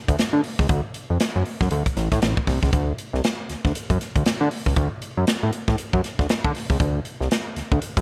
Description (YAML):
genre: funk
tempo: 118 BPM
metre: 4/4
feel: swing 60% on 16ths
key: unclear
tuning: A4 = 440 Hz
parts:
  - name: fat analog bass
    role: bass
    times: 0.1-8.0 s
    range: A1 to D3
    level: -24 LUFS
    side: equal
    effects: none
  - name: swinging big-band drum kit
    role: drums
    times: 0.1-8.0 s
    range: hi-hat, kick drum, snare drum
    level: -26 LUFS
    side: equal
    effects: none
room: light reverb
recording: none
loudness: -23 LUFS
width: mono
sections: 0.0-8.0 A section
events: none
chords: none